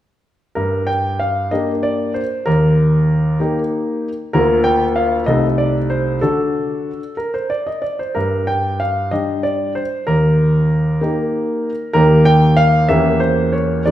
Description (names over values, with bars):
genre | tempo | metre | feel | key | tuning
classical-period piano sonatina | 63 BPM (dotted quarters) | 6/8 | rubato | G minor | A4 = 440 Hz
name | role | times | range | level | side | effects
clear grand piano | solo | 0.6-13.9 s | C2 to G5 | -14 LUFS | equal | none
room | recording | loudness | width
wet recital hall reverb, RT60 1.6 s | heard from further back in the room | -14 LUFS | side -12 dB against mid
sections
0.6-13.9 A section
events
none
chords
0.6 Gm; 2.5 Eb; 4.3 Bb/D; 5.3 Adim/C; 6.2 D; 8.2 G5; 10.1 Eb; 12.9 Edim7